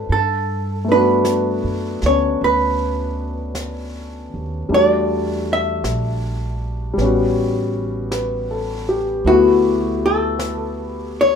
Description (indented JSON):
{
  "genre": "jazz ballad",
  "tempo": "52 BPM",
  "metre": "4/4",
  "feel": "swing 68% on 8ths",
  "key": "unclear",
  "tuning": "A4 = 441 Hz",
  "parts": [
    { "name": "warm grand piano", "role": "accompaniment", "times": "0.0-11.4 s", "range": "G3 to F#5", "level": "-20 LUFS", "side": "left 3 dB", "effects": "plate reverb" },
    { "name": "upright bass", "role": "bass", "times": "0.0-11.4 s", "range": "A1 to G2", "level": "-25 LUFS", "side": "right 1 dB", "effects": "none" },
    { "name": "archtop guitar, miked and amplified", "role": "melody", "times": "0.1-11.4 s", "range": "F#4 to E5", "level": "-18 LUFS", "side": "right 1 dB", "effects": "plate reverb" },
    { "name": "jazz brush drum kit", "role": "drums", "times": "0.1-11.4 s", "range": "brushed snare drum, hi-hat, snare drum", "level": "-33 LUFS", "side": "equal", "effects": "none" }
  ],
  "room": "wet studio reverb, RT60 0.5 s",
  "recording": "rough home demo mix",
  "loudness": "-16 LUFS",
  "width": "side -7 dB against mid",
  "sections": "0.0-11.4 A section",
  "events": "none",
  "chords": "0.1 Gmaj9; 4.7 Em11; 7.0 A13; 9.3 D69"
}